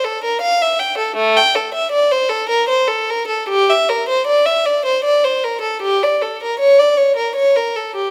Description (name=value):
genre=classical, baroque-style suite movement for unaccompanied violin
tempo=78 BPM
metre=3/4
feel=rubato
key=unclear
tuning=A4 = 439 Hz
part: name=rich violin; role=solo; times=0.0-8.1 s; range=A3 to G5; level=-16 LUFS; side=equal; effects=none
room=light reverb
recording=close, detailed microphones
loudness=-16 LUFS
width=mono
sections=0.0-8.1 A section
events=none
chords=none